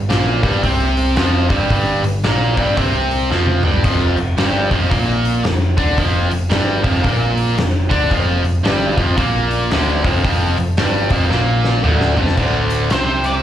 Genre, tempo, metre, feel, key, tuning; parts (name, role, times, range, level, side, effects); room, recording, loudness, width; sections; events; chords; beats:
blues rock power trio and southern rock; 112 BPM; 4/4; swing 62% on 8ths; A4 = 443 Hz
distorted electric guitar; riff; 0.0-13.4 s; D2 to D4; -17 LUFS; equal; overdrive, slapback echo
overdriven picked electric bass; bass; 0.0-13.4 s; D1 to D2; -19 LUFS; equal
oversized low-tuned drum kit; drums; 0.1-13.3 s; crash cymbal, hi-hat, kick drum, snare drum, toms; -20 LUFS; equal
octave-fuzz lead guitar; melody; 12.9-13.3 s; C5 to D5; -20 LUFS; right 2 dB; wah, distortion, slapback echo
light reverb; live gig heard through the venue's PA, club reverb; -14 LUFS; side -11 dB against mid
0.0-12.4 A section; 12.4-13.4 B section
drum fill 3.3-3.8, 11.3-12.4
0.0 Fsus24; 3.8 Bb6; 12.4 N.C.
0.10 0.64 1.18 | 1.71 2.25 2.78 3.31 | 3.85 4.38 4.92 5.45 | 5.98 6.51 7.05 7.58 | 8.11 8.65 9.18 9.71 | 10.24 10.78 11.31 11.85 | 12.38 12.91